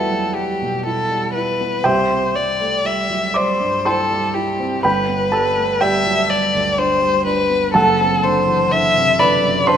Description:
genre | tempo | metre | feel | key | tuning
classical, romantic duo for violin and grand piano | 61 BPM | 3/4 | rubato | G major | A4 = 440 Hz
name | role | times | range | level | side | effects
warm violin | melody | 0.0-9.8 s | G4 to E5 | -17 LUFS | left 2 dB | none
dark baby grand piano | accompaniment | 0.0-9.8 s | F#1 to D6 | -19 LUFS | right 2 dB | none
room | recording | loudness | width
moderate scoring stage reverb, RT60 1.9 s | none | -15 LUFS | side -8 dB against mid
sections
0.0-9.8 A section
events
none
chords
0.0 Em; 1.9 C; 4.8 G; 7.7 D7/F#

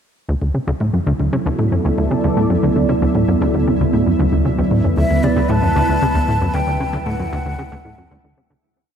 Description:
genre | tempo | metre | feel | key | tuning
ambient, sequencer-driven space music | 115 BPM | 4/4 | straight | D major | A4 = 440 Hz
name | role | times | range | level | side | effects
sweeping resonant pad | sustained chords | 0.3-8.6 s | F#3 to D5 | -19 LUFS | right 2 dB | chorus
plucky analog bass | riff | 0.3-8.5 s | D2 to C#3 | -18 LUFS | equal | cassette tape, tape echo
analog drone | bass | 2.2-8.6 s | D2 | -25 LUFS | equal | chorus
pulsing gated texture | texture | 1.0-8.6 s | E4 to E5 | -33 LUFS | right 3 dB | chorus, built-in reverb
breathy mellow concert flute | melody | 5.0-8.4 s | D5 to A5 | -22 LUFS | left 1 dB | tape echo
room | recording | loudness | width
wet huge ambient reverb, RT60 8.1 s | dark, warm production | -15 LUFS | side -8 dB against mid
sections
0.3-8.6 A section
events
fade-in on synth drone 0.3-8.6; fade-in on synth texture 0.3-8.6; fade-out 5.8-8.6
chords
0.3 D

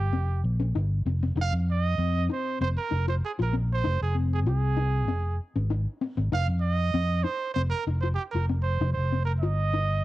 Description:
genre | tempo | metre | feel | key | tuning
afrobeat | 97 BPM | 4/4 | straight | F minor | A4 = 441 Hz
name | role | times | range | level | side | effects
clear trumpet | melody | 0.0-10.0 s | G4 to F5 | -31 LUFS | right 6 dB | cassette tape
fingered electric bass | bass | 0.0-10.0 s | F1 to F2 | -25 LUFS | equal | none
handpan | arpeggios | 0.1-9.8 s | C4 to F4 | -32 LUFS | left 6 dB | cassette tape
room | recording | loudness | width
small room ambience | home recording on cassette | -24 LUFS | side -16 dB against mid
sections
0.0-10.0 A section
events
none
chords
0.0 C7(no3)/F; 1.4 Fm; 6.3 Cm/F

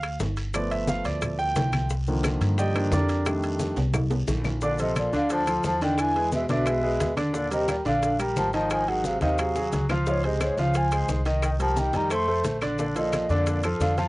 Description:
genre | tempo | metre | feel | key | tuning
Afro-Cuban jazz | 176 BPM | 4/4 | straight | Bb major | A4 = 440 Hz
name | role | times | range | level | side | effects
clear concert grand piano | accompaniment | 0.0-14.1 s | D3 to G5 | -27 LUFS | equal | cassette tape
upright bass | bass | 0.0-14.1 s | G1 to G2 | -28 LUFS | equal | none
bongos | percussion | 0.0-14.0 s | none | -36 LUFS | left 3 dB | none
claves | percussion | 0.0-13.8 s | none | -35 LUFS | left 4 dB | none
congas | percussion | 0.0-14.1 s | none | -33 LUFS | left 1 dB | none
maracas | percussion | 0.0-14.1 s | none | -42 LUFS | left 4 dB | none
timbales | percussion | 0.0-14.1 s | none | -35 LUFS | right 3 dB | none
guiro | percussion | 0.2-14.1 s | none | -45 LUFS | right 2 dB | none
breathy mellow concert flute | melody | 4.6-14.1 s | Db5 to C6 | -27 LUFS | equal | none
clear tenor saxophone | second line | 4.6-14.1 s | Ab2 to A3 | -32 LUFS | left 2 dB | cassette tape
room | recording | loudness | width
moderate booth ambience, RT60 0.2 s | home recording on cassette, nothing above 10.4 kHz | -22 LUFS | side -21 dB against mid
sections
0.0-4.6 A section; 4.6-14.1 B section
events
grand piano solo 0.0-4.6; drum fill 3.8-4.6, 9.6-10.1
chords
0.0 G7(no3); 0.5 G7; 1.9 Cm11; 3.3 F13; 4.6 Bbmaj7; 6.0 E7; 7.3 Ebmaj9; 8.7 Ab6; 10.1 Dbmaj7; 11.4 Cm7; 12.1 F; 12.8 Bbmaj7

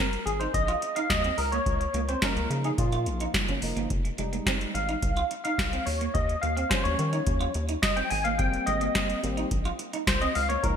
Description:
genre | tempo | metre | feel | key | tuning
early-eighties boogie funk | 107 BPM | 4/4 | straight | Ab major | A4 = 439 Hz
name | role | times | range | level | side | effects
barky tine electric piano | accompaniment | 0.0-10.8 s | F3 to Ab5 | -29 LUFS | left 2 dB | ensemble chorus
semi-hollow electric guitar | riff | 0.0-10.6 s | Ab3 to F4 | -34 LUFS | right 6 dB | lush chorus
booming analog drum machine | drums | 0.1-10.8 s | hi-hat, kick drum, snare drum | -28 LUFS | equal | gated reverb
rubbery square bass | bass | 0.3-10.8 s | F1 to Eb3 | -30 LUFS | equal | none
room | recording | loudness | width
light reverb | bright 1980s-style digital production | -24 LUFS | side -8 dB against mid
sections
0.0-10.8 A section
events
tine electric piano solo 0.0-10.8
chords
0.0 Abadd9; 1.4 Db6; 3.9 Fm9; 5.9 Eb9; 8.1 Abmaj9

